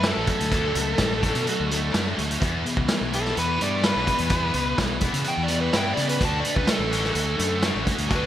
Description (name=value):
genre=indie rock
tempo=126 BPM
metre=4/4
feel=straight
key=unclear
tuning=A4 = 440 Hz
part: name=biting overdriven guitar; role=melody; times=0.0-8.3 s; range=A4 to A5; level=-27 LUFS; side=equal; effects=none
part: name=high-gain distorted guitar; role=riff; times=0.0-8.3 s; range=E2 to F#4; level=-28 LUFS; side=right 5 dB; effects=distortion, analog chorus, digital delay
part: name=fuzz fingered electric bass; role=bass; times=0.0-8.3 s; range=A1 to C#3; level=-28 LUFS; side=equal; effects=overdrive
part: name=vintage drum kit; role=drums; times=0.0-8.2 s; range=hi-hat, kick drum, snare drum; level=-25 LUFS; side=equal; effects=gated reverb
part: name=thick fuzz guitar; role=riff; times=0.1-8.3 s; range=E3 to F#4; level=-30 LUFS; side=left 8 dB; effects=distortion
room=moderate lush hall reverb, RT60 2.1 s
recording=bright 1980s-style digital production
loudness=-21 LUFS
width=side -11 dB against mid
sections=0.0-8.3 A section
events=overdriven electric guitar solo 0.0-8.3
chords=0.0 Dmaj7; 2.4 Emadd9; 6.2 Dmaj7